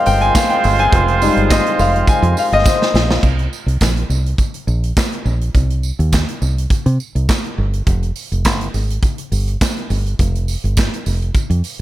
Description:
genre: disco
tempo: 104 BPM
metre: 4/4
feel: straight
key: C minor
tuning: A4 = 439 Hz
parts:
  - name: warm concert grand piano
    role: accompaniment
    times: 0.0-3.3 s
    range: G3 to Ab5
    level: -16 LUFS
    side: left 4 dB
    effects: none
  - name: clear horn section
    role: stabs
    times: 0.0-2.9 s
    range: Ab3 to C5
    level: -18 LUFS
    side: right 6 dB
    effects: none
  - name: fingered electric bass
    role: bass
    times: 0.1-11.8 s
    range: F1 to C3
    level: -16 LUFS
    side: equal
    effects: none
  - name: modern studio drum kit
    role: drums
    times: 0.1-11.8 s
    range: crash cymbal, handclaps, hi-hat, kick drum, snare drum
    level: -18 LUFS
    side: equal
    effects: gated reverb
  - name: tambourine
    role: percussion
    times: 0.1-11.8 s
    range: none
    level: -31 LUFS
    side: right 9 dB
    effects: none
room: little or no reverb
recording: none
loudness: -14 LUFS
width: side -14 dB against mid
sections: 0.0-3.2 A section; 3.2-11.8 B section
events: grand piano solo 0.0-3.2; drum fill 2.7-3.2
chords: 0.0 Fm7; 3.2 C7(no3); 7.9 N.C.

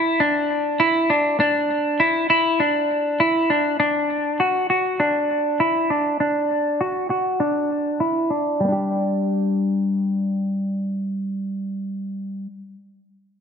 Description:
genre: dream pop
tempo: 100 BPM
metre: 4/4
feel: straight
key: unclear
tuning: A4 = 441 Hz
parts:
  - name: semi-hollow electric guitar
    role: solo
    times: 0.0-12.5 s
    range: G3 to G4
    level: -19 LUFS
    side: equal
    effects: wide subtle chorus, low-pass filter, ping-pong delay
room: moderate scoring stage reverb, RT60 1.7 s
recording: none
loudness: -19 LUFS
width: side -6 dB against mid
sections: 0.0-8.6 A section; 8.6-11.0 B section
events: filter sweep on clean electric guitar 0.0-8.6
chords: 0.0 Dsus2; 3.8 D; 8.6 G5

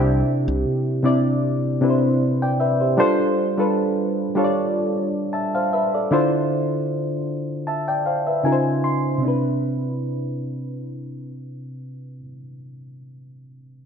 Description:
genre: R&B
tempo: 77 BPM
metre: 4/4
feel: swing 54% on 16ths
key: C major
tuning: A4 = 439 Hz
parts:
  - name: reed electric piano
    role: accompaniment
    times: 0.0-13.9 s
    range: C3 to C6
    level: -20 LUFS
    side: equal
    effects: lush chorus
  - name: fingered electric bass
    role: bass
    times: 0.0-0.6 s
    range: C2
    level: -22 LUFS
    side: equal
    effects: none
room: moderate plate reverb, RT60 1.7 s, studio reverb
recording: bright 1980s-style digital production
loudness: -19 LUFS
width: side -7 dB against mid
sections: 0.0-9.2 A section; 9.2-12.3 B section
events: reed electric piano fill 7.7-9.2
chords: 0.0 Cmaj7; 3.0 G9sus4; 6.1 Dm9; 8.4 Dbmaj7; 9.2 Cmaj7

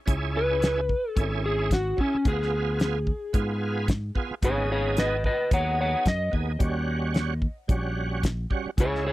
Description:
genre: straight-eighth soul blues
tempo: 110 BPM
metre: 4/4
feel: swing 56% on 16ths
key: unclear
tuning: A4 = 440 Hz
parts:
  - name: bright tonewheel organ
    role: accompaniment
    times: 0.1-9.1 s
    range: G3 to G#4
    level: -31 LUFS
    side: right 5 dB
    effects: slow rotary speaker, overdrive, chorus vibrato
  - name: fingered electric bass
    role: bass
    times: 0.1-9.1 s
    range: G#1 to Ab2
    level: -29 LUFS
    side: equal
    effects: none
  - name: damped 70s drum kit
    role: drums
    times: 0.1-9.0 s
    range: hi-hat, kick drum, snare drum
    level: -25 LUFS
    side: equal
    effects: none
  - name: electric slide guitar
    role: melody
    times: 0.4-9.1 s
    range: C#4 to F#5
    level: -27 LUFS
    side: left 1 dB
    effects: none
room: little or no reverb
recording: dry, close 1970s-style studio recording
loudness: -23 LUFS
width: side -16 dB against mid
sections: 0.0-9.1 A section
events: none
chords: 0.0 C#m; 2.2 Ddim7; 4.4 G#m; 6.6 D#7#9

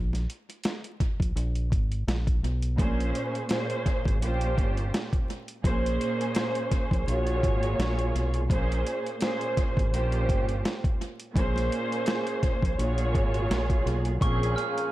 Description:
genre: hip hop, boom-bap hip-hop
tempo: 84 BPM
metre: 4/4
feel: swing 56% on 16ths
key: Bb minor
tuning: A4 = 440 Hz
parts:
  - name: deep dub fingered electric bass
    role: bass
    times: 0.0-14.5 s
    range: G1 to Cb2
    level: -28 LUFS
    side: equal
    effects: none
  - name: boom bap sampler-style drum kit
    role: drums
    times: 0.1-14.9 s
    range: hi-hat, kick drum, snare drum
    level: -28 LUFS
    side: equal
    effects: tape echo
  - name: muted studio string section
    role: accompaniment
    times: 2.8-14.9 s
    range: Bb2 to Db5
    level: -29 LUFS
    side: right 1 dB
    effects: cassette tape, high-pass filter, low-pass filter
  - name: glockenspiel with hard plastic mallets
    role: melody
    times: 14.2-14.9 s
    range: Db6 to F6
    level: -31 LUFS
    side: right 4 dB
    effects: high-pass filter, low-pass filter
  - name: dark analog pad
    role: sustained chords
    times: 14.2-14.9 s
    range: Ab4 to Db6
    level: -34 LUFS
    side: equal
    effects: chorus, high-pass filter, low-pass filter
  - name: warm saxophone section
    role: stabs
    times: 14.2-14.9 s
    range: F3 to Ab4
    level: -35 LUFS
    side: left 4 dB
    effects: high-pass filter, low-pass filter, tape echo
room: studio ambience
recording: echo-heavy mix, vinyl crackle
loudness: -25 LUFS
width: side -16 dB against mid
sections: 0.0-14.2 A section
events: break 0.0-2.8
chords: 0.0 N.C.; 1.4 Abmadd9; 2.8 Bbm7; 4.2 Bbm69/G; 5.6 Bbm7; 7.1 Ab13sus4; 8.5 Bbm7; 9.9 Bbm69/G; 11.4 Bbm7; 12.8 Ab13sus4; 14.2 Bbm7

